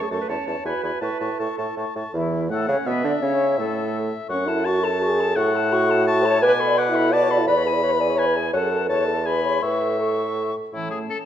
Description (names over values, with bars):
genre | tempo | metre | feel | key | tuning
quick classical-period movement for wind quintet | 168 BPM | 3/4 | straight | A major | A4 = 440 Hz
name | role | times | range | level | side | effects
silver concert flute | melody | 0.0-11.3 s | E4 to D6 | -29 LUFS | left 7 dB | none
clear oboe | second line | 0.0-11.2 s | E4 to B5 | -27 LUFS | left 4 dB | none
mellow French horn | accompaniment | 0.0-11.3 s | A3 to D5 | -23 LUFS | left 1 dB | none
warm clarinet | accompaniment | 0.0-11.3 s | E3 to C#5 | -29 LUFS | right 7 dB | none
warm bassoon | bass | 0.1-11.0 s | E2 to D3 | -25 LUFS | right 2 dB | none
room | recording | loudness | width
moderate recital hall reverb, RT60 1.8 s | none | -19 LUFS | side -10 dB against mid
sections
0.0-2.1 A section; 2.1-10.7 B section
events
none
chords
0.3 A; 0.7 E; 1.0 A; 2.1 A/E; 3.2 A; 4.3 F#m; 5.4 F#m/A; 6.4 Bm7; 7.5 E; 8.5 F#m; 8.9 A/E; 9.3 E; 9.6 A